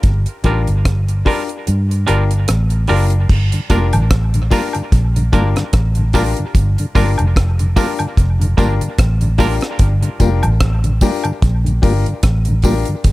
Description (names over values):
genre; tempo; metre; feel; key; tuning
dub reggae; 74 BPM; 4/4; swing 56% on 16ths; G minor; A4 = 441 Hz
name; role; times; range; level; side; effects
vintage muted fingered electric bass; bass; 0.0-13.1 s; F1 to G2; -15 LUFS; equal; none
deep reggae drum kit; drums; 0.0-13.1 s; crash cymbal, hi-hat, kick drum, rim click; -16 LUFS; equal; none
twangy electric guitar; accompaniment; 0.4-9.6 s; G3 to Bb4; -24 LUFS; right 5 dB; tremolo, low-pass filter, dub echo
bright upright piano; stabs; 0.4-12.9 s; D4 to Bb4; -23 LUFS; left 7 dB; low-pass filter, dub echo
mellow tonewheel organ; accompaniment; 3.5-13.0 s; G2 to F4; -21 LUFS; left 1 dB; chorus vibrato, slow rotary speaker
tambourine and woodblock; percussion; 3.7-12.9 s; none; -27 LUFS; equal; dub echo
room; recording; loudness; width
small room reverb; none; -13 LUFS; side -18 dB against mid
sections
0.0-3.3 A section; 3.3-13.1 B section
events
kick muted 1.7-3.3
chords
0.0 Gm7